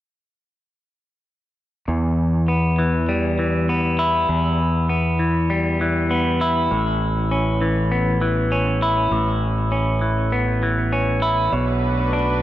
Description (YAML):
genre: rock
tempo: 100 BPM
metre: 4/4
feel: straight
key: E dorian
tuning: A4 = 439 Hz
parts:
  - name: semi-hollow electric guitar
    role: arpeggios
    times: 1.9-12.4 s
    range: E2 to E4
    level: -20 LUFS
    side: left 1 dB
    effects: tape echo
  - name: growling fingered electric bass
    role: bass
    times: 1.9-12.4 s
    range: A1 to E2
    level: -22 LUFS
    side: right 1 dB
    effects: overdrive
  - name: rich chamber string section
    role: sustained chords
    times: 11.5-12.4 s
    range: A3 to B4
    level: -26 LUFS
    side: left 1 dB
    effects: none
  - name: felt-muted upright piano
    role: arpeggios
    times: 11.5-12.4 s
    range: B4 to C#5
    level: -27 LUFS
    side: right 6 dB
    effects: tape echo
room: light reverb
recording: none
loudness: -18 LUFS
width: side -14 dB against mid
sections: 1.9-12.4 A section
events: none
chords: 1.9 Em; 6.7 Aadd9; 11.5 Bm7